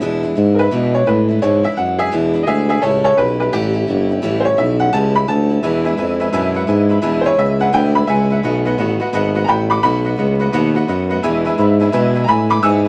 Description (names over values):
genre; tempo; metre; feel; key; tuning
rockabilly; 171 BPM; 4/4; swing 63% on 8ths; E mixolydian; A4 = 438 Hz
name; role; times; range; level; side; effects
picked steel-string acoustic guitar; accompaniment; 0.0-12.9 s; E2 to F#4; -26 LUFS; equal; none
warm tuba; bass; 0.0-12.9 s; G1 to B2; -18 LUFS; equal; none
bright upright piano; melody; 0.5-12.9 s; G4 to E6; -19 LUFS; equal; none
tack piano; accompaniment; 5.6-12.9 s; B4 to B5; -25 LUFS; equal; none
room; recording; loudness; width
moderate studio ambience, RT60 0.5 s; vinyl crackle; -16 LUFS; mono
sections
0.0-12.9 A section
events
none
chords
0.0 E7; 2.8 A7; 5.6 E7; 8.4 B7; 11.2 E7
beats
| 0.01 0.37 0.72 1.07 | 1.42 1.77 2.12 2.47 | 2.83 3.18 3.53 3.88 | 4.23 4.58 4.93 5.28 | 5.63 5.98 6.33 6.68 | 7.03 7.38 7.73 8.08 | 8.43 8.78 9.13 9.48 | 9.83 10.18 10.53 10.88 | 11.23 11.58 11.93 12.28 | 12.63